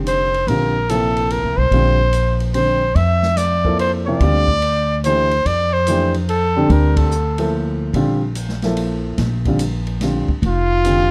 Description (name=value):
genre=modal jazz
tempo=145 BPM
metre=3/4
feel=swing 66% on 8ths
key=Bb lydian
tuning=A4 = 445 Hz
part: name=warm baby grand piano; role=accompaniment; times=0.0-11.1 s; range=C3 to A4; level=-23 LUFS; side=equal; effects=none
part: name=upright bass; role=bass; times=0.0-11.1 s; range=F1 to F2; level=-21 LUFS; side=equal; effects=none
part: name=clear trumpet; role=melody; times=0.1-7.5, 10.5-11.1 s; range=F4 to E5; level=-20 LUFS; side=equal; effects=plate reverb
part: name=open jazz drum kit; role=drums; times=0.1-11.0 s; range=hi-hat, kick drum, ride cymbal, snare drum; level=-31 LUFS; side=equal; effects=none
room=light reverb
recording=dark, warm production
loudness=-17 LUFS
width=mono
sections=0.0-11.1 A section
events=band accent 6.9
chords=0.0 Bbmaj9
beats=0.07 | 0.48 0.89 1.31 | 1.72 2.14 2.55 | 2.96 3.38 3.79 | 4.21 4.62 5.04 | 5.45 5.87 6.28 | 6.70 7.11 7.53 | 7.94 8.36 8.77 | 9.19 9.60 10.02 | 10.43 10.85